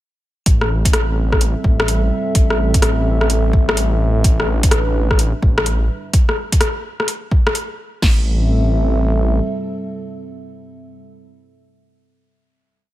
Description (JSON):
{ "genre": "future garage", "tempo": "127 BPM", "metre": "4/4", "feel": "swing 65% on 16ths", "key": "A minor", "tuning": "A4 = 440 Hz", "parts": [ { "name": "dark analog pad", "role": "sustained chords", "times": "0.5-11.0 s", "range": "G3 to E5", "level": "-23 LUFS", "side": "right 1 dB", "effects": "chorus, sidechain pumping" }, { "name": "swelling detuned saw bass", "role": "bass", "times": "0.5-9.4 s", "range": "A1", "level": "-17 LUFS", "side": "equal", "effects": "tube saturation, sidechain pumping" }, { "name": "deep house drum kit", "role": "drums", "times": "0.5-8.2 s", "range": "crash cymbal, kick drum, snare drum", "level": "-15 LUFS", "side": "equal", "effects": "overdrive" }, { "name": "deep house drum kit", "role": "drums", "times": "0.5-7.7 s", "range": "hi-hat, rim click", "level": "-20 LUFS", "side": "left 1 dB", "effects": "overdrive" } ], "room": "light reverb", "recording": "none", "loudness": "-14 LUFS", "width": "side -15 dB against mid", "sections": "0.5-8.0 groove; 8.0-11.8 final chord", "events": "none", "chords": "0.5 Am7; 4.2 Em7/A; 8.0 Am7", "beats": "| 0.47 0.94 1.41 1.88 | 2.35 2.83 3.30 3.77 | 4.24 4.72 5.19 5.66 | 6.13 6.61 7.08 7.55 | 8.02 8.50 8.97 9.44 | 9.91 10.39 10.86" }